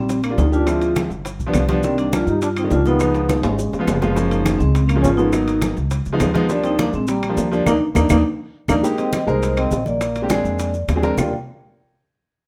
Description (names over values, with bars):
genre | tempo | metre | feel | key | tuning
Afro-Cuban jazz | 206 BPM | 4/4 | straight | Eb major | A4 = 439 Hz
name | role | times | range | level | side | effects
vibraphone with medium mallets | melody | 0.0-11.3 s | Bb3 to G5 | -24 LUFS | equal | none
breathy trombone | second line | 0.0-11.3 s | Eb3 to Eb4 | -27 LUFS | equal | none
upright bass | bass | 0.0-11.3 s | Gb1 to G2 | -24 LUFS | equal | none
bongos | percussion | 0.1-11.3 s | none | -31 LUFS | equal | none
congas | percussion | 0.1-11.2 s | none | -30 LUFS | equal | none
maracas | percussion | 0.1-11.2 s | none | -41 LUFS | equal | none
timbales | percussion | 0.1-11.2 s | none | -33 LUFS | equal | none
claves | percussion | 0.2-11.3 s | none | -34 LUFS | equal | none
warm upright piano | accompaniment | 0.3-11.3 s | Eb3 to Bb4 | -24 LUFS | equal | none
room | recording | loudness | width
light reverb | none | -19 LUFS | mono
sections
0.0-8.8 A section; 8.8-11.2 B section; 11.2-12.4 C section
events
drum fill 3.0-4.2, 7.7-8.8; band accent 7.7-8.8; upright piano fill 8.4-8.8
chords
0.0 Ebmaj9; 0.7 Dm7b5; 1.3 G7; 1.8 Cm9; 3.0 Db9; 4.2 Gbmaj9; 5.3 Abm7; 5.9 Db9; 6.5 Ebmaj9; 8.8 Bb13sus4; 10.0 Bb9; 11.2 Ebmaj9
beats
0.09 0.38 | 0.68 0.97 1.26 1.55 | 1.84 2.13 2.42 2.71 | 3.00 3.29 3.59 3.88 | 4.17 4.46 4.75 5.04 | 5.33 5.63 5.92 6.21 | 6.50 6.79 7.08 7.38 | 7.67 7.96 8.25 8.54 | 8.84 9.13 9.42 9.72 | 10.01 10.30 10.60 10.89 | 11.18